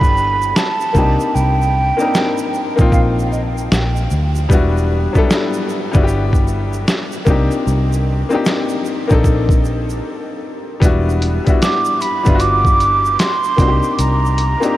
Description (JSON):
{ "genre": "lo-fi hip hop", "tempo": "76 BPM", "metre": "4/4", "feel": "swing 63% on 16ths", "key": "unclear", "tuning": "A4 = 440 Hz", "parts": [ { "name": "breathy mellow concert flute", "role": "melody", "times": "0.0-4.3, 11.6-14.8 s", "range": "Eb5 to D6", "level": "-18 LUFS", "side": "right 3 dB", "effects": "low-pass filter, tape echo" }, { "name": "clear upright piano", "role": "accompaniment", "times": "0.0-14.8 s", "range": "F#3 to Bb4", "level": "-19 LUFS", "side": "left 3 dB", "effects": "cassette tape, low-pass filter" }, { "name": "vintage muted fingered electric bass", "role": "bass", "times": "0.0-14.5 s", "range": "E1 to D2", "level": "-17 LUFS", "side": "equal", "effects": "none" }, { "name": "lo-fi sampler-style drum kit", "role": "drums", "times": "0.0-14.8 s", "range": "hi-hat, kick drum, snare drum", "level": "-17 LUFS", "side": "equal", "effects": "none" }, { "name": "egg shaker", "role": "percussion", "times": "0.0-14.8 s", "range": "none", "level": "-39 LUFS", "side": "right 6 dB", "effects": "none" } ], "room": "moderate huge ambient reverb, RT60 7.2 s", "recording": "dreamy mix soaked in reverb, cassette tape", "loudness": "-13 LUFS", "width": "side -15 dB against mid", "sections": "0.0-14.8 A section", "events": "break 0.0-10.8", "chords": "0.0 Em7; 0.9 Cm7; 4.5 Em7; 7.3 Cm7; 10.8 Em7; 13.6 Cm7", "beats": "0.55 | 1.34 2.13 2.92 3.71 | 4.50 5.29 6.08 6.87 | 7.66 8.45 9.24 10.03 | 10.82 11.61 12.40 13.19 | 13.97 14.76" }